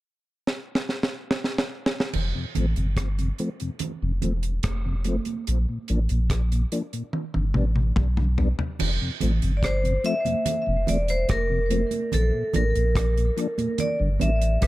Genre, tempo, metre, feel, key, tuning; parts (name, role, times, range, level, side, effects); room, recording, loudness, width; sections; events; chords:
dub reggae; 72 BPM; 4/4; straight; F major; A4 = 438 Hz
deep reggae drum kit; drums; 0.5-14.7 s; crash cymbal, hi-hat, kick drum, rim click, snare drum, toms; -27 LUFS; equal
warm sub bass; bass; 2.1-14.7 s; E1 to B1; -23 LUFS; equal
congas; percussion; 2.1-14.7 s; -32 LUFS; right 6 dB; dub echo
mellow tonewheel organ; accompaniment; 2.4-14.3 s; F2 to D4; -30 LUFS; left 2 dB; chorus vibrato, slow rotary speaker, dub echo
vibraphone with hard mallets; melody; 9.6-14.7 s; A4 to E5; -25 LUFS; equal; dub echo
studio ambience; -22 LUFS; side -17 dB against mid
0.0-2.1 A section; 2.1-8.8 B section; 8.8-14.7 C section
drum fill 0.5-2.1, 7.1-8.8; part muted 5.5-8.8
0.0 N.C.; 2.1 F; 5.5 Bb; 7.1 G; 8.8 F; 12.1 Bb; 13.8 G